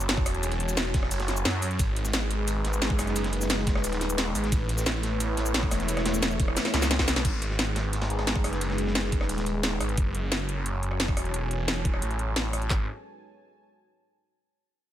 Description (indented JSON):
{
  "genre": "dark technical drum and bass",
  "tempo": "176 BPM",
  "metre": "4/4",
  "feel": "straight",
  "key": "G# phrygian",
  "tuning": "A4 = 440 Hz",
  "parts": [
    { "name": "dark analog pad", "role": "sustained chords", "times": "0.0-12.9 s", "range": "G#3 to A5", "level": "-33 LUFS", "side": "left 1 dB", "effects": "chorus, sidechain pumping" },
    { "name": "snarling distorted saw bass", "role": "bass", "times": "0.0-12.9 s", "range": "D#1 to F#2", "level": "-29 LUFS", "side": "equal", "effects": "distortion, sidechain pumping" },
    { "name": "drum and bass drum kit", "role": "drums", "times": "0.0-12.7 s", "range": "crash cymbal, hi-hat, rim click, shaker, snare drum", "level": "-29 LUFS", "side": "equal", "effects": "none" },
    { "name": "breakbeat sampler-style drum kit", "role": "drums", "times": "0.1-9.9 s", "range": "hi-hat, ride cymbal, snare drum", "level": "-37 LUFS", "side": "right 1 dB", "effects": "high-pass filter on snare, high-pass filter on cymbals, high-pass filter on hats" },
    { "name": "drum and bass drum kit", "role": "drums", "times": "0.2-12.8 s", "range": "handclaps, kick drum, snare drum", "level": "-27 LUFS", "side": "equal", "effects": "overdrive" }
  ],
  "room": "light reverb, digital ambience",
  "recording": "none",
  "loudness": "-24 LUFS",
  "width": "side -12 dB against mid",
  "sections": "0.0-7.2 A section; 7.2-12.7 B section; 12.7-14.1 C section",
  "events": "drop 0.0-7.2; drum fill 6.6-7.2",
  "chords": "0.0 F#m7; 1.8 G#m7; 4.5 Aadd9; 7.2 G#m7; 10.0 F#m7; 12.7 G#m"
}